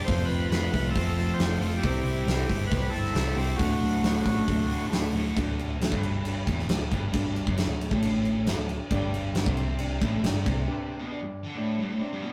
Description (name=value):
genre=classic rock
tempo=136 BPM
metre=4/4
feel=straight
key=D major from 5.4 s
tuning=A4 = 437 Hz
part: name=overdriven tonewheel organ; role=melody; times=0.0-4.9 s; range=F#4 to C5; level=-36 LUFS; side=equal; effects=slow rotary speaker, digital delay
part: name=dark smooth lead guitar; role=second line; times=0.0-4.9 s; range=D4 to A4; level=-40 LUFS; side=equal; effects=overdrive
part: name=distorted electric guitar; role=riff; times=0.0-12.3 s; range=D2 to C5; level=-35 LUFS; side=equal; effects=distortion
part: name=sludgy distorted guitar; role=riff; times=0.0-12.3 s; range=D2 to C4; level=-37 LUFS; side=equal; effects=overdrive
part: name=warm upright piano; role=accompaniment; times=0.1-12.3 s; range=A3 to A5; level=-39 LUFS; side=equal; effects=none
part: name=hollow-body short-scale picked electric bass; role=bass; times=0.1-10.7 s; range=D1 to C2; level=-32 LUFS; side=equal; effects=none
part: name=huge arena drum kit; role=drums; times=0.1-10.6 s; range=crash cymbal, hi-hat, kick drum, snare drum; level=-32 LUFS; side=equal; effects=none
room=moderate small room reverb, RT60 0.6 s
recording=rough rehearsal-room recording, tube saturation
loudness=-27 LUFS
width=mono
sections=0.0-5.4 A section; 5.4-12.3 B section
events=upright piano fill 4.0-5.4; break 10.7-12.3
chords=0.1 F; 1.8 C; 3.6 D; 8.9 G5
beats=| 0.07 0.51 0.95 1.39 | 1.83 2.27 2.71 3.15 | 3.60 4.04 4.48 4.92 | 5.36 5.81 6.25 6.69 | 7.13 7.58 8.02 8.46 | 8.91 9.35 9.79 10.23 | 10.68 11.12 11.56 12.00